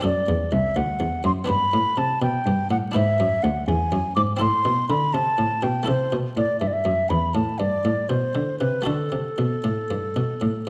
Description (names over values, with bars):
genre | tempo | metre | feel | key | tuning
classical, baroque-style sonata movement with continuo | 82 BPM (dotted quarters) | 12/8 | rubato | unclear | A4 = 440 Hz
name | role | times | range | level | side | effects
baroque flute | melody | 0.0-10.7 s | A4 to D6 | -26 LUFS | equal | none
buff-stop harpsichord | accompaniment | 0.0-10.7 s | C2 to B4 | -31 LUFS | equal | none
dark cello | bass | 0.0-10.7 s | C2 to D3 | -27 LUFS | equal | none
room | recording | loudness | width
wet recital hall reverb, RT60 1.7 s | vinyl crackle | -23 LUFS | mono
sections
0.0-10.7 A section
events
none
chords
0.0 D7; 1.5 G; 3.0 E7; 4.4 Am; 8.9 D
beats
| 0.04 0.77 1.49 2.21 | 2.95 3.68 4.41 5.14 | 5.88 6.61 7.35 8.10 | 8.86 9.64 10.41